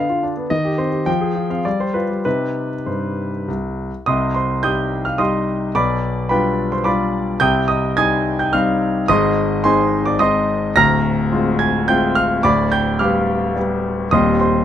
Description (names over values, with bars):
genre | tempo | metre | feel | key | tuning
classical-period piano sonatina | 107 BPM | 3/4 | rubato | C minor | A4 = 439 Hz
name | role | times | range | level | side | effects
warm concert grand piano | solo | 0.0-14.6 s | D1 to Bb6 | -16 LUFS | equal | none
room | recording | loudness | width
light reverb | none | -16 LUFS | side -10 dB against mid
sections
0.0-4.1 A section; 4.1-14.6 B section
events
none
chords
0.0 Dm6; 0.5 Cm/Eb; 1.1 Fm; 1.7 G7; 2.3 Cm; 5.8 G7/B; 7.4 Cm; 9.1 Ab; 10.8 Dm7b5; 12.4 G7/D; 14.1 Cm/Eb